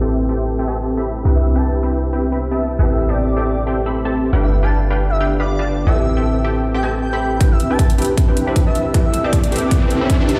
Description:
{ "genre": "future bass", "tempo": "156 BPM", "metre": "4/4", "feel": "swing 56% on 16ths, half-time", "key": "A minor", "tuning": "A4 = 439 Hz", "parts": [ { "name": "mellow tine electric piano", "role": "accompaniment", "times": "0.0-10.4 s", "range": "C4 to C5", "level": "-27 LUFS", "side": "equal", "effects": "overdrive, sidechain pumping" }, { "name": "shimmering ambient pad", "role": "sustained chords", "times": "0.0-10.4 s", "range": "C3 to G4", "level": "-32 LUFS", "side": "equal", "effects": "none" }, { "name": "supersaw stab", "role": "riff", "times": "0.0-10.4 s", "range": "C4 to B5", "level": "-24 LUFS", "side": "equal", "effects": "sidechain pumping, low-pass filter" }, { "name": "warm 808-style bass", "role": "bass", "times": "0.0-7.4 s", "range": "G1 to C2", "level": "-21 LUFS", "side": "equal", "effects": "sidechain pumping" }, { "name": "airy dreamy lead", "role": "melody", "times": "1.4-9.8 s", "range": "D5 to A5", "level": "-27 LUFS", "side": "equal", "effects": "chorus, sidechain pumping, digital delay" }, { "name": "electronic hi-hat", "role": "drums", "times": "7.4-10.4 s", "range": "none", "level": "-31 LUFS", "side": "equal", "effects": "overdrive, high-pass filter on hats" }, { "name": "electronic kick drum", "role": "drums", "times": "7.4-10.2 s", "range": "none", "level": "-18 LUFS", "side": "equal", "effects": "overdrive" }, { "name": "riser", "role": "sound effects", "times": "8.1-10.4 s", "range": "none", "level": "-27 LUFS", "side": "equal", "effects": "none" } ], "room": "moderate digital room reverb, RT60 1.1 s, digital ambience", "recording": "played on a big sound system in a bare room, large studio reverb, low-pass filter", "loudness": "-17 LUFS", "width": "mono", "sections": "0.0-7.4 A section; 7.4-10.4 B section", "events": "filter sweep 0.0-7.4; build-up 7.4-10.4; filter sweep on supersaw synth 7.4-10.4; riser 8.1-10.4", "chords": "0.0 Am7; 1.3 Cmaj7; 2.8 Am7; 4.3 G7; 5.9 Am7; 7.4 Cmaj7; 8.9 Am7", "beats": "0.10 0.48 0.87 | 1.25 1.64 2.02 2.41 | 2.79 3.17 3.56 3.94 | 4.33 4.71 5.10 5.48 | 5.87 6.25 6.64 7.02 | 7.41 7.79 8.18 8.56 | 8.95 9.33 9.71 10.10" }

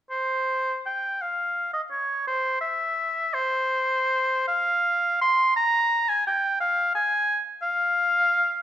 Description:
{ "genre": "classical, baroque-style fantasia for unaccompanied oboe", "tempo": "56 BPM (dotted quarters)", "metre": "6/8", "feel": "rubato", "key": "F minor", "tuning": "A4 = 440 Hz", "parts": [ { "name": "clear oboe", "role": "solo", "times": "0.1-8.6 s", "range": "C5 to C6", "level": "-22 LUFS", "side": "equal", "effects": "none" } ], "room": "moderate recital hall reverb, RT60 1.4 s", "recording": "minimal, uncompressed stereo recording", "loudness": "-22 LUFS", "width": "side -11 dB against mid", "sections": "0.1-8.6 A section", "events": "none", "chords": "none", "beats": "| 0.12 1.21 | 2.26 3.33 | 4.47 5.54 | 6.61 7.65" }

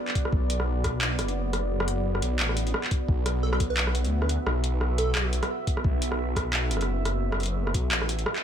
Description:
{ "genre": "half-time drum and bass", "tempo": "174 BPM", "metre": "4/4", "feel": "swing 56% on 16ths, half-time", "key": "B minor", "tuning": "A4 = 440 Hz", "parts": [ { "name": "deep dark ambient pad", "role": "sustained chords", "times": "0.0-8.4 s", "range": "B3 to E5", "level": "-32 LUFS", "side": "right 2 dB", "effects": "chorus, built-in reverb, sidechain pumping" }, { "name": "drum and bass drum kit", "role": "drums", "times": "0.1-8.4 s", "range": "handclaps, hi-hat, rim click", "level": "-29 LUFS", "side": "equal", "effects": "none" }, { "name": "electronic kick drum", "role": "drums", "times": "0.2-7.8 s", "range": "none", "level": "-26 LUFS", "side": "equal", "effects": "none" }, { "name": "phased detuned saw bass", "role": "bass", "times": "0.3-8.2 s", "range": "F#1 to D2", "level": "-27 LUFS", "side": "equal", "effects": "phaser" }, { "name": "plucky unison lead", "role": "melody", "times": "3.4-5.3 s", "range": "A4 to B4", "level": "-34 LUFS", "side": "right 4 dB", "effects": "cassette tape, tape echo" } ], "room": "light reverb", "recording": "none", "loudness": "-24 LUFS", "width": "side -9 dB against mid", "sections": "0.0-8.4 A section", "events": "none", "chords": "0.0 B5", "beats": "| 0.33 0.67 1.01 1.36 | 1.71 2.05 2.40 2.74 | 3.08 3.43 3.77 4.12 | 4.46 4.81 5.15 5.50 | 5.84 6.19 6.53 6.88 | 7.22 7.57 7.91 8.26" }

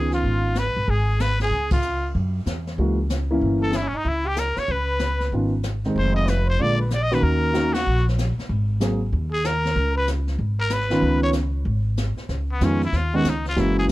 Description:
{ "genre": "jazz, small-group swing and bop", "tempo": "189 BPM", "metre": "4/4", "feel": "swing 63% on 8ths", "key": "Db mixolydian", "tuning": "A4 = 441 Hz", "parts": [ { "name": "trumpet with straight mute", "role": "melody", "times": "0.0-13.9 s", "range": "Cb4 to Eb5", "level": "-26 LUFS", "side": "left 2 dB", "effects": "none" }, { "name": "breathy trumpet", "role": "second line", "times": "0.0-11.3 s", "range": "Db4 to Eb5", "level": "-28 LUFS", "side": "right 2 dB", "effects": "none" }, { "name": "warm grand piano", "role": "accompaniment", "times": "0.0-0.5, 2.8-13.9 s", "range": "D3 to Ab4", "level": "-23 LUFS", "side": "right 1 dB", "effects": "none" }, { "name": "upright bass", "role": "bass", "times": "0.0-13.9 s", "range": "F1 to Gb2", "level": "-23 LUFS", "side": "equal", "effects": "none" }, { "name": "jazz brush drum kit", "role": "drums", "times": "0.1-13.9 s", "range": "brushed snare drum, hi-hat, kick drum, ride cymbal, snare drum", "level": "-29 LUFS", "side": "equal", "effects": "none" } ], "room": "studio ambience", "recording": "none", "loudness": "-20 LUFS", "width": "side -17 dB against mid", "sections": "0.0-12.3 A section; 12.3-13.9 A section", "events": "band accent 1.7, 7.7", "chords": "0.0 Db9; 0.9 Abm; 1.5 Db; 2.1 Gb9; 3.4 Gdim7; 4.7 Db9; 6.0 Fm7; 6.6 Bb7; 7.2 Ebm7; 8.5 Ab9; 9.8 Db9", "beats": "0.24 0.56 | 0.88 1.20 1.51 1.83 | 2.15 2.46 2.78 3.10 | 3.42 3.73 4.05 4.37 | 4.69 5.00 5.32 5.64 | 5.96 6.27 6.59 6.91 | 7.22 7.54 7.86 8.18 | 8.49 8.81 9.13 9.44 | 9.76 10.08 10.40 10.71 | 11.03 11.35 11.66 11.98 | 12.30 12.62 12.93 13.25 | 13.57 13.88" }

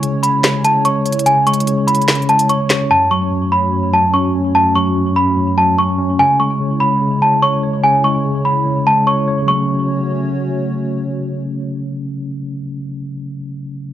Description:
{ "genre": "hip hop, trap", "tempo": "146 BPM", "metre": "4/4", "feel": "half-time", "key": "F# minor", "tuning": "A4 = 440 Hz", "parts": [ { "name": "small celesta", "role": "melody", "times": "0.0-10.7 s", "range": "G#5 to C#6", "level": "-15 LUFS", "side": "right 1 dB", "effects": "low-pass filter" }, { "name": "mellow tine electric piano", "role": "accompaniment", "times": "0.0-13.9 s", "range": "F#2 to C#5", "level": "-18 LUFS", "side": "equal", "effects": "medium stereo tremolo, low-pass filter" }, { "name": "hollow soft pad", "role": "sustained chords", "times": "0.0-12.6 s", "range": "G#3 to C#5", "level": "-24 LUFS", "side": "equal", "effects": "chorus" }, { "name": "trap drum kit", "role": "drums", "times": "0.0-2.8 s", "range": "handclaps, hi-hat, snare drum", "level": "-18 LUFS", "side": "equal", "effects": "none" } ], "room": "light reverb", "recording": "dry, gritty hardware recording", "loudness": "-13 LUFS", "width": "side -12 dB against mid", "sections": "0.0-9.5 A section; 9.5-12.8 B section", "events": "break 0.0-2.9", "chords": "0.0 C#m; 2.9 F#m; 6.2 C#m; 9.5 F#m", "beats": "0.03 0.44 0.85 | 1.26 1.67 2.08 2.49 | 2.90 3.32 3.73 4.14 | 4.55 4.96 5.37 5.78 | 6.19 6.60 7.01 7.43 | 7.84 8.25 8.66 9.07 | 9.48 9.89 10.30 10.71 | 11.12 11.54 11.95 12.36" }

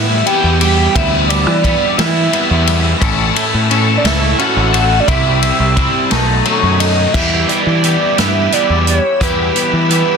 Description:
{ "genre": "indie rock", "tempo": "58 BPM (dotted quarters)", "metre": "6/8", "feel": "straight", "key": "E minor", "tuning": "A4 = 439 Hz", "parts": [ { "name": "overdriven synth lead", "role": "melody", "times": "0.0-10.2 s", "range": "A4 to G5", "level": "-17 LUFS", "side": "right 1 dB", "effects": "phaser, analog delay" }, { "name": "overdriven tine electric piano", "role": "second line", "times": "0.0-6.1 s", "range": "D4 to G4", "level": "-25 LUFS", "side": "right 10 dB", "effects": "fast tremolo" }, { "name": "ensemble organ-string", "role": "sustained chords", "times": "0.0-10.2 s", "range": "G3 to E6", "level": "-25 LUFS", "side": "equal", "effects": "ensemble chorus" }, { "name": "crunchy overdriven guitar", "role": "riff", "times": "0.0-10.2 s", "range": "A2 to E4", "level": "-19 LUFS", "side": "right 10 dB", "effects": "lush chorus" }, { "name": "twangy electric guitar", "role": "riff", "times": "0.0-10.2 s", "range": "E3 to A4", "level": "-19 LUFS", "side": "left 10 dB", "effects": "ensemble chorus" }, { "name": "growling picked electric bass", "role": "bass", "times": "0.0-10.0 s", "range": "A1 to E3", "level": "-16 LUFS", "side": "equal", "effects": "overdrive" }, { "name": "vintage drum kit", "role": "drums", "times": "0.3-10.1 s", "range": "crash cymbal, hi-hat, kick drum, ride cymbal, snare drum", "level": "-18 LUFS", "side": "left 1 dB", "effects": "none" } ], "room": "light reverb", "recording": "dense, heavily limited modern master", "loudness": "-11 LUFS", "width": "side -6 dB against mid", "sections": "0.0-7.1 A section; 7.1-10.2 B section", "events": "none", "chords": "0.0 Em; 3.0 A; 5.1 C; 6.1 B7; 7.1 Em", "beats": "| 0.95 1.98 | 3.01 4.04 | 5.08 6.11 | 7.14 8.18 | 9.21" }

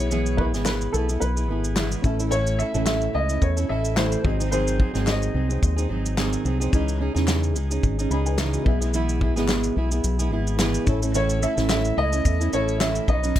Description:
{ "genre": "acoustic pop", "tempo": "109 BPM", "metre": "4/4", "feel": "swing 55% on 16ths", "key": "unclear", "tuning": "A4 = 435 Hz", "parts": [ { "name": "warm upright piano", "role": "melody", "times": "0.0-6.1, 11.2-13.4 s", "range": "A4 to E5", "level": "-27 LUFS", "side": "left 1 dB", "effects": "tape echo" }, { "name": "felt-muted upright piano", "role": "accompaniment", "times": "0.0-13.1 s", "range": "B3 to B5", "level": "-36 LUFS", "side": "left 5 dB", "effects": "none" }, { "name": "fingerpicked plugged-in steel-string acoustic guitar", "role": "accompaniment", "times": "0.0-13.4 s", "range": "G#2 to B4", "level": "-26 LUFS", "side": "right 3 dB", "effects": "none" }, { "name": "fingered electric bass", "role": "bass", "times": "0.0-13.3 s", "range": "G#1 to E2", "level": "-24 LUFS", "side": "equal", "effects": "none" }, { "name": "natural country drum kit", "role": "drums", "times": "0.1-13.4 s", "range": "crash cymbal, kick drum, shaker, snare drum", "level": "-25 LUFS", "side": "equal", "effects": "none" }, { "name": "group handclap", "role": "percussion", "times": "0.7-12.9 s", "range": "none", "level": "-34 LUFS", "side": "left 3 dB", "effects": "none" } ], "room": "light reverb", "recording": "none", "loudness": "-20 LUFS", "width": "side -12 dB against mid", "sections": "0.0-13.4 A section", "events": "none", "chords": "0.0 E; 2.0 A; 4.2 G#7; 6.7 C#madd9; 8.7 E; 10.9 A", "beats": "| 0.11 0.66 1.21 1.76 | 2.32 2.87 3.42 3.97 | 4.52 5.07 5.63 6.18 | 6.73 7.28 7.83 8.39 | 8.94 9.49 10.04 10.60 | 11.15 11.70 12.25 12.81 | 13.36" }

